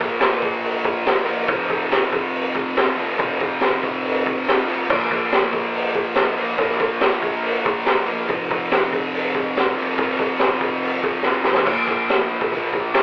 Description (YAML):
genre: garage rock duo or trio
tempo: 142 BPM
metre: 4/4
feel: straight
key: unclear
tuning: A4 = 440 Hz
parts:
  - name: thick fuzz guitar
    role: riff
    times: 0.0-13.0 s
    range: F2 to Bb3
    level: -25 LUFS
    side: equal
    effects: distortion
  - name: raw garage drum kit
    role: drums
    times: 0.0-13.0 s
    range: crash cymbal, hi-hat, kick drum, snare drum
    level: -22 LUFS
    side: equal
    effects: none
  - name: tambourine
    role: percussion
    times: 0.2-11.3 s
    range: none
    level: barely audible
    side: none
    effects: none
room: light reverb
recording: band playing live in one room, telephone sound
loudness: -20 LUFS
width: mono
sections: 0.0-11.7 A section; 11.7-13.0 B section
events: drum fill 11.2-11.7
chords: 0.0 Bb5; 1.5 F5; 4.9 Bb5; 8.3 F5; 11.7 Bb5